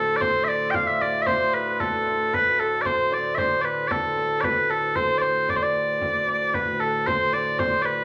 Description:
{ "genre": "medieval dance", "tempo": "114 BPM", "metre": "2/4", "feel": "straight", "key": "unclear", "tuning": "A4 = 439 Hz", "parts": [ { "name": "mellow small bagpipes", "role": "melody", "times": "0.0-8.0 s", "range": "A4 to G5", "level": "-24 LUFS", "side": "equal", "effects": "none" }, { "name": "hammered dulcimer", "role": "second line", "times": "0.0-8.0 s", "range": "A4 to F5", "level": "-31 LUFS", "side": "equal", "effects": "none" }, { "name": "pedal harmonium", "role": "drone", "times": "0.0-8.0 s", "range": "D2 to A2", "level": "-36 LUFS", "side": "equal", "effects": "none" }, { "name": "frame drum", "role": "percussion", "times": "0.2-7.8 s", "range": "none", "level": "-37 LUFS", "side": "equal", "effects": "none" } ], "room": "wet studio reverb, RT60 0.5 s", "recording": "none", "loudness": "-23 LUFS", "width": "mono", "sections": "0.0-6.5 A section; 6.5-8.0 A section", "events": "none", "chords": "none" }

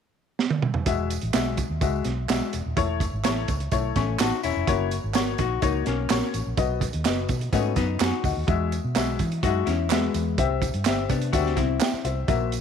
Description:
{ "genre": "uptempo 1960s-style soul", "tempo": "126 BPM", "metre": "4/4", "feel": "straight", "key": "E major", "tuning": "A4 = 441 Hz", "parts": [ { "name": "crunchy breakbeat drum kit", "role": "drums", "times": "0.4-12.6 s", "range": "hi-hat, kick drum, snare drum, toms", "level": "-26 LUFS", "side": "right 5 dB", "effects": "none" }, { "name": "warm upright piano", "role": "accompaniment", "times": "0.9-12.5 s", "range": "G#3 to C#6", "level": "-28 LUFS", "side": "left 11 dB", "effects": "none" }, { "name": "vintage muted fingered electric bass", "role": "bass", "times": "0.9-12.6 s", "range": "D#1 to E3", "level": "-28 LUFS", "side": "right 1 dB", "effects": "none" }, { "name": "tambourine and handclaps", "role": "percussion", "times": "0.9-12.6 s", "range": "none", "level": "-36 LUFS", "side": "right 12 dB", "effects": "none" }, { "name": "vintage hollow-body jazz guitar", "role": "riff", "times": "4.0-12.3 s", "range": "G#3 to F#4", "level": "-28 LUFS", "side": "left 12 dB", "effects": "none" } ], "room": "light reverb, studio ambience", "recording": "1960s-style stereo with parts hard left and right", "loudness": "-22 LUFS", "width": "side -7 dB against mid", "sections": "0.9-12.6 A section", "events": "drum fill 0.4-0.9; upright piano fill 3.7-4.7", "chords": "0.0 N.C.; 0.9 Eadd9; 2.8 A/E; 4.7 F#; 6.6 B; 8.5 Eadd9; 10.4 C" }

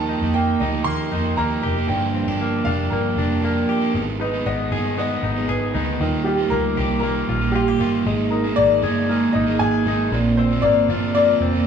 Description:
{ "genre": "indie pop", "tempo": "117 BPM", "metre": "4/4", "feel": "straight", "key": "unclear", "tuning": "A4 = 440 Hz", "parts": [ { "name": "clear upright piano", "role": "melody", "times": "0.0-11.7 s", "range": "G4 to C6", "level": "-23 LUFS", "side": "left 3 dB", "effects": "none" }, { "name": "crunchy overdriven guitar", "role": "accompaniment", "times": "0.0-11.7 s", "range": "G2 to Ab4", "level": "-23 LUFS", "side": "right 5 dB", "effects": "none" }, { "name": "direct-recorded clean electric guitar", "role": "arpeggios", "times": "0.0-11.7 s", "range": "G2 to Ab4", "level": "-24 LUFS", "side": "left 3 dB", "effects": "none" }, { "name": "vintage muted picked electric bass", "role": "bass", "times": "0.0-11.7 s", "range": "F1 to F2", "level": "-25 LUFS", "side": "right 1 dB", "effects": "none" } ], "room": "wet studio reverb, RT60 0.8 s", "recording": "band playing live in one room, studio ambience", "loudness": "-18 LUFS", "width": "side -7 dB against mid", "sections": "0.0-3.9 A section; 3.9-11.7 B section", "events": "none", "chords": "0.0 Ebadd9; 1.9 Gm7; 3.9 Abm; 6.0 Ebadd9; 8.1 Absus2; 10.1 Bbadd9" }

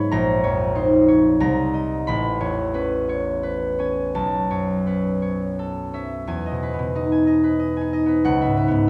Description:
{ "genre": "classical, solo harp piece", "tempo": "82-100 BPM", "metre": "3/4", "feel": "rubato", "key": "E major", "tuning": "A4 = 444 Hz", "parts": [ { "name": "concert harp", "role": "solo", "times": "0.0-8.9 s", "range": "A1 to B5", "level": "-21 LUFS", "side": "equal", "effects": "none" } ], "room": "moderate recital hall reverb, RT60 1.3 s", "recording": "dark, warm production", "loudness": "-21 LUFS", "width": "mono", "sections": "0.0-6.3 A section; 6.3-8.9 B section", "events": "none", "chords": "0.1 A#m11; 1.4 Cm7; 2.1 Amaj9; 4.1 B9sus4; 6.3 Emaj7; 8.3 C#m11" }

